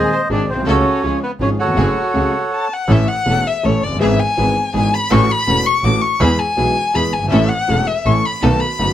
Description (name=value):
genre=tango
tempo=163 BPM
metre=3/4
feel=rubato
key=A major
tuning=A4 = 440 Hz
part: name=bandoneon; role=melody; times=0.0-2.7 s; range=F#4 to B#5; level=-18 LUFS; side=right 2 dB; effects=none
part: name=warm violin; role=second line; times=0.0-8.9 s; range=B3 to D6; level=-18 LUFS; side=left 4 dB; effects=none
part: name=warm concert grand piano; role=accompaniment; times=0.0-8.9 s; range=E1 to A4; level=-18 LUFS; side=equal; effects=none
part: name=rich symphonic string section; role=stabs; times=0.0-8.9 s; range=A3 to A4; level=-25 LUFS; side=equal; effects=none
part: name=bright double bass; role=bass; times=0.0-8.9 s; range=E1 to E2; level=-19 LUFS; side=right 1 dB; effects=none
room=light reverb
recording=none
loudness=-14 LUFS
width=side -11 dB against mid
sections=0.0-2.9 A section; 2.9-8.9 B section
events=stop 2.5-2.9; violin solo 2.9-8.9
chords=0.0 G#; 0.7 F#m/C#; 1.0 C#; 1.8 F#madd9; 2.9 A; 4.0 E/G#; 5.1 A6; 6.2 E; 7.3 A; 8.4 B7